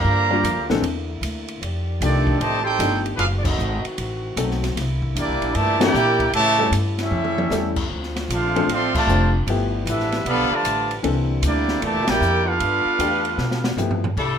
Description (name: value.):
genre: jazz, big band swing.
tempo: 153 BPM.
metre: 4/4.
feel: swing 66% on 8ths.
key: unclear.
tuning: A4 = 439 Hz.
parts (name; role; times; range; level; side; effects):
warm trumpet section; melody; 0.0-13.8 s; Bb3 to C6; -22 LUFS; right 1 dB; none.
bright trombone section; second line; 0.0-13.8 s; Bb2 to G4; -26 LUFS; right 3 dB; none.
warm trombone section; sustained chords; 0.0-14.2 s; C#3 to D5; -32 LUFS; left 3 dB; none.
upright bass; bass; 0.0-14.4 s; F1 to B2; -24 LUFS; equal; none.
clear concert grand piano; accompaniment; 0.3-14.0 s; E3 to C5; -25 LUFS; left 4 dB; none.
open jazz drum kit; drums; 0.4-14.3 s; crash cymbal, hi-hat, kick drum, ride cymbal, snare drum, toms; -28 LUFS; equal; none.
clear saxophone section; melody; 14.2-14.4 s; G3 to A4; -22 LUFS; left 4 dB; none.
room: moderate large studio reverb, RT60 1.1 s.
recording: minimal, uncompressed stereo recording.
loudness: -18 LUFS.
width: side -8 dB against mid.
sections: 0.0-14.2 A section.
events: band accent 3.4, 5.7, 8.9, 12.0; drum fill 7.1-7.5, 13.4-14.2.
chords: 0.0 Gm7; 0.8 Dsus2; 1.6 F13; 3.2 F#dim7; 4.8 C13; 6.3 A7; 7.9 Dm7; 9.5 G13; 11.0 C13; 12.6 G13.